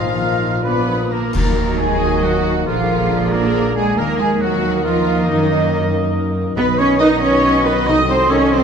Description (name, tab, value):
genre	classical, dramatic, fast romantic movement for symphony orchestra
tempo	92 BPM (dotted quarters)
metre	6/8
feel	rubato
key	Eb minor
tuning	A4 = 440 Hz
part	rich symphonic violin section	melody	0.0-8.6 s	Eb4 to F5	-26 LUFS	left 5 dB	none
part	clear clarinet	second line	0.0-8.4 s	Gb4 to Eb5	-30 LUFS	left 1 dB	none
part	clear oboe	second line	0.0-8.6 s	Eb4 to D#5	-28 LUFS	right 1 dB	none
part	large flute ensemble	second line	0.0-8.6 s	Eb5 to F6	-23 LUFS	right 2 dB	none
part	warm symphonic violin section	second line	0.0-8.6 s	Eb4 to D#5	-27 LUFS	left 4 dB	none
part	mellow bassoon	accompaniment	0.0-8.4 s	D3 to F3	-26 LUFS	equal	none
part	warm symphonic viola section	accompaniment	0.0-8.6 s	D3 to B4	-28 LUFS	right 2 dB	none
part	bright trombone section	sustained chords	0.0-8.6 s	Eb3 to Bb3	-27 LUFS	right 3 dB	none
part	dark French horn section	sustained chords	0.0-8.6 s	Bb3 to Bb4	-27 LUFS	left 5 dB	none
part	concert harp	arpeggios	0.0-8.6 s	Gb2 to Bb5	-26 LUFS	left 9 dB	none
part	clear trumpet	stabs	0.0-8.6 s	F4 to Eb5	-27 LUFS	right 1 dB	none
part	rich symphonic cello section	bass	0.0-8.6 s	Bb2 to D#4	-19 LUFS	right 3 dB	none
part	warm chamber double bass section	bass	0.0-8.6 s	Bb1 to Gb2	-23 LUFS	right 3 dB	none
part	clash cymbals and concert bass drum	percussion	1.3-2.2 s	none	-25 LUFS	left 1 dB	none
room	wet recital hall reverb, RT60 1.6 s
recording	dark, warm production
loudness	-14 LUFS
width	side -6 dB against mid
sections	0.0-1.3 A section; 1.3-8.6 B section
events	band accent 1.3-1.8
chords	0.0 Bbsus4; 0.6 Bb; 1.3 Ebm; 2.7 Bb7; 4.0 Ebm; 5.3 Ebm/Gb; 6.6 B; 7.9 Cdim7